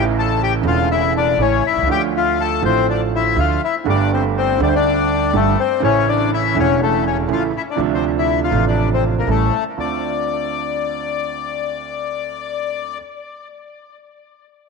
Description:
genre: tango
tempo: 122 BPM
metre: 4/4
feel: rubato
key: D minor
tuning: A4 = 440 Hz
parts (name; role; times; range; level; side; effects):
- bandoneon; melody; 0.0-13.0 s; A3 to A5; -19 LUFS; left 11 dB; tape echo
- warm concert grand piano; accompaniment; 0.0-13.0 s; E1 to G4; -21 LUFS; right 11 dB; none
- upright bass; bass; 0.0-10.0 s; E1 to D2; -21 LUFS; right 1 dB; none
room: moderate echo chamber reverb, RT60 2.3 s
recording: 1960s-style stereo with parts hard left and right, nothing above 10.8 kHz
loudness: -16 LUFS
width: side -4 dB against mid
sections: 0.0-9.8 A section; 9.8-13.7 B section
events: none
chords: 0.0 A; 1.9 Dm; 3.9 Gsus2; 5.8 A; 7.8 Dm7; 9.3 A7; 9.8 Dm7

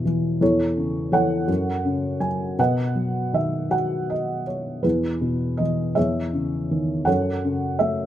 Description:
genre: classical, lyrical solo piano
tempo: 54 BPM (dotted quarters)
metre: 6/8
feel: rubato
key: unclear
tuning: A4 = 440 Hz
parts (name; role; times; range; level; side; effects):
- felt-muted upright piano; solo; 0.0-8.1 s; E2 to G#5; -20 LUFS; equal; none
room: light reverb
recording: close, detailed microphones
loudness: -21 LUFS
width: side -12 dB against mid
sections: 0.0-8.1 A section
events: none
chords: 0.4 A/E; 1.5 F#m; 2.6 B; 4.8 E; 6.0 C#madd9/E; 7.1 F#m

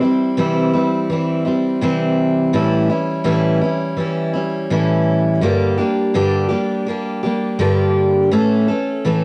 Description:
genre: acoustic folk duo or small band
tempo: 83 BPM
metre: 4/4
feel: straight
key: unclear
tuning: A4 = 436 Hz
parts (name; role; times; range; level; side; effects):
- picked steel-string acoustic guitar; solo; 0.0-9.2 s; G2 to A4; -18 LUFS; equal; cassette tape
room: moderate spring reverb, RT60 1.5 s, small room ambience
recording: home recording on cassette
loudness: -18 LUFS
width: mono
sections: 0.0-9.2 A section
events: none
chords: 0.0 C; 2.5 A7; 5.4 Gm; 8.3 A

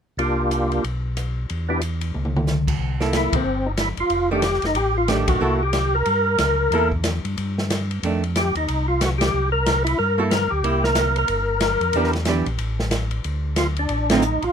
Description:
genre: soul jazz organ trio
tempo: 184 BPM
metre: 4/4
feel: swing 62% on 8ths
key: C mixolydian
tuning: A4 = 440 Hz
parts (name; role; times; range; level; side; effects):
- percussive tonewheel organ; melody; 0.2-14.5 s; Bb3 to Bb4; -21 LUFS; left 1 dB; overdrive, chorus vibrato, slow rotary speaker
- mellow tonewheel organ; bass; 0.2-14.5 s; F1 to G2; -24 LUFS; equal; overdrive, chorus vibrato, slow rotary speaker
- open jazz drum kit; drums; 0.2-14.5 s; crash cymbal, hi-hat, kick drum, ride cymbal, rim click, snare drum, toms; -26 LUFS; equal; none
- archtop guitar, miked and amplified; accompaniment; 3.0-14.2 s; D3 to A4; -23 LUFS; right 4 dB; none
room: light reverb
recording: minimal, uncompressed stereo recording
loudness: -19 LUFS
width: side -7 dB against mid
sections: 0.2-2.8 A section; 2.8-14.5 B section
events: drum fill 2.1-2.5; band accent 3.3, 5.3, 9.2, 14.1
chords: 0.2 C9sus4; 0.8 N.C.; 1.5 Em7; 2.1 N.C.; 2.8 C6; 4.1 F13; 5.4 C6; 8.0 F6; 9.3 C7; 11.9 Em7; 12.6 N.C.; 13.2 Dm

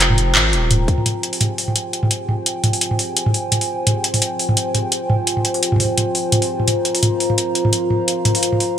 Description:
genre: half-time drum and bass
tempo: 171 BPM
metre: 4/4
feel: swing 54% on 16ths, half-time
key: F minor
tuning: A4 = 440 Hz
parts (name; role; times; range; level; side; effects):
- dark analog pad; sustained chords; 0.0-8.8 s; F4 to Bb5; -21 LUFS; equal; chorus, sidechain pumping
- saturated sub bass; bass; 0.0-0.9 s; Eb1 to Ab1; -18 LUFS; equal; none
- drum and bass drum kit; drums; 0.0-8.7 s; handclaps, hi-hat, toms; -17 LUFS; equal; gated reverb
- electronic kick drum; drums; 0.9-1.0 s; none; -18 LUFS; equal; none
room: moderate lush hall reverb, RT60 1.9 s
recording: bright 1980s-style digital production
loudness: -16 LUFS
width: side -9 dB against mid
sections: 0.0-1.1 A section; 1.1-8.8 B section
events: none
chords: 0.0 Fmadd9

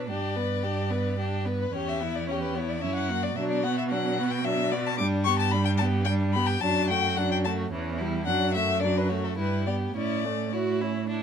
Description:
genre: quick classical-period movement for string quartet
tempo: 110 BPM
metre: 3/4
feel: straight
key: B minor, D major from 5.0 s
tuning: A4 = 441 Hz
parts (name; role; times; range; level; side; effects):
- rich violin; second line; 0.0-11.2 s; C#4 to B4; -32 LUFS; left 3 dB; none
- clear viola; accompaniment; 0.0-11.2 s; E3 to F#4; -31 LUFS; right 1 dB; none
- clear cello; bass; 0.0-11.2 s; E2 to B2; -29 LUFS; right 4 dB; none
- warm violin; melody; 0.1-11.1 s; A4 to D6; -29 LUFS; left 7 dB; none
room: light reverb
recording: minimal, uncompressed stereo recording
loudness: -24 LUFS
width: side -7 dB against mid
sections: 0.0-11.2 A section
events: none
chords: 0.1 G; 1.7 C#m7b5/E; 2.8 F#7; 3.4 Bm; 5.0 G; 6.6 D/F#; 7.7 C#dim/E; 8.3 D/F#; 9.4 Em/G; 10.0 A

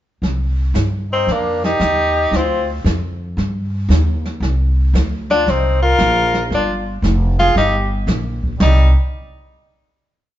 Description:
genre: jazz, small-group swing and bop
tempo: 115 BPM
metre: 4/4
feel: swing 66% on 8ths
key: C minor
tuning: A4 = 441 Hz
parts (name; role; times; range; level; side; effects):
- upright bass; bass; 0.2-8.9 s; F1 to G2; -17 LUFS; equal; none
- jazz brush drum kit; drums; 0.2-9.0 s; brushed snare drum, crash cymbal, hi-hat, kick drum, snare drum; -22 LUFS; equal; none
- edgy tenor saxophone; melody; 1.1-8.9 s; Bb3 to F4; -17 LUFS; left 2 dB; none
- warm trumpet; second line; 1.1-8.9 s; G3 to Bb4; -22 LUFS; right 2 dB; none
room: moderate stone room reverb, RT60 1.3 s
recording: band playing live in one room, nothing above 7.6 kHz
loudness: -14 LUFS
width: side -12 dB against mid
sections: 0.2-8.6 A section; 8.6-10.4 final chord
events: none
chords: 0.2 Cmadd11; 2.3 Dm7; 3.4 Eb; 4.4 C9sus4; 8.6 N.C.

